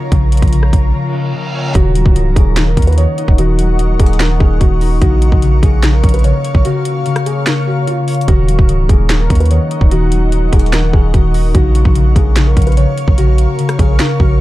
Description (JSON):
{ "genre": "hip hop, trap", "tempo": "147 BPM", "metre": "4/4", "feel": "half-time", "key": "Eb minor", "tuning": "A4 = 442 Hz", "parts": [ { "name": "concert harp", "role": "accompaniment", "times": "0.0-14.4 s", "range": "Db3 to Db5", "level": "-17 LUFS", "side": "left 4 dB", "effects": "none" }, { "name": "granular cloud pad", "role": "sustained chords", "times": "0.0-14.4 s", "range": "F4 to Db6", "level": "-24 LUFS", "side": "equal", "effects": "built-in reverb" }, { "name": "long sustained 808-style bass", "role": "bass", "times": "0.1-14.4 s", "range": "Db1 to Eb2", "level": "-12 LUFS", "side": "equal", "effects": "none" }, { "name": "trap drum kit", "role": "drums", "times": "0.1-14.3 s", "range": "finger snaps, hi-hat, kick drum, rim click, snare drum", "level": "-13 LUFS", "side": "equal", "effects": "none" }, { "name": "reverse cymbal", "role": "sound effects", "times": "1.1-1.8 s", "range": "none", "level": "-26 LUFS", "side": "right 3 dB", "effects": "none" }, { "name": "dark concert grand piano", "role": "melody", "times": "1.8-14.4 s", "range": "F4 to Db5", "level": "-21 LUFS", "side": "right 1 dB", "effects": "none" } ], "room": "little or no reverb", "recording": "dark, warm production", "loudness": "-10 LUFS", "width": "side -16 dB against mid", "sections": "0.0-1.8 A section; 1.8-14.4 B section", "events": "break 0.9-1.8, 6.6-8.3; reverse cymbal 1.1-1.8", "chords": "0.0 Bbm; 1.8 Ebm7; 5.0 Bbm; 8.3 Ebm7; 11.5 Bbm" }